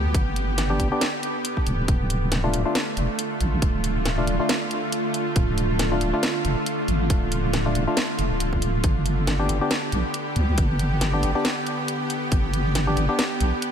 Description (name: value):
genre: deep dubstep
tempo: 138 BPM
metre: 4/4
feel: swing 56% on 16ths, half-time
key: D dorian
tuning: A4 = 440 Hz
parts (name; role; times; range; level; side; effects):
- bowed-like drone; sustained chords; 0.0-13.7 s; D3 to G4; -26 LUFS; right 1 dB; built-in reverb
- deep soft wobble bass; bass; 0.0-13.5 s; D1 to D2; -24 LUFS; equal; chorus
- electronic kick drum; drums; 0.1-12.4 s; none; -22 LUFS; equal; none
- garage drum kit; drums; 0.1-13.7 s; hi-hat, snare drum; -27 LUFS; equal; none
- percussive organ stab; stabs; 0.7-13.2 s; A3 to G4; -29 LUFS; left 2 dB; chorus, dub echo
room: light reverb, digital ambience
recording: none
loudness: -21 LUFS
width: side -8 dB against mid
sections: 0.0-13.7 A section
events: none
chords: 0.0 G; 1.9 Dm; 8.8 G